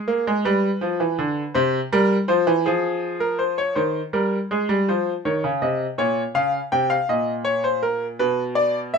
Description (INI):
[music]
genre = classical, baroque-style two-part invention for grand piano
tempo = 54 BPM (dotted quarters)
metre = 6/8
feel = straight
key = F minor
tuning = A4 = 440 Hz
[part]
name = bright concert grand piano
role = solo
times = 0.0-9.0 s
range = Bb2 to G5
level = -19 LUFS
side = equal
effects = none
[sound]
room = moderate small room reverb, RT60 0.6 s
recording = minimal, uncompressed stereo recording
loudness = -19 LUFS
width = side -5 dB against mid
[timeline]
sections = 0.0-3.8 A section; 3.8-9.0 B section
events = none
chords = 0.4 G7; 1.6 C7; 2.7 Fm; 3.8 Ab/Eb; 4.9 F5; 6.0 Bbm; 7.1 Bbmadd11; 8.2 Bm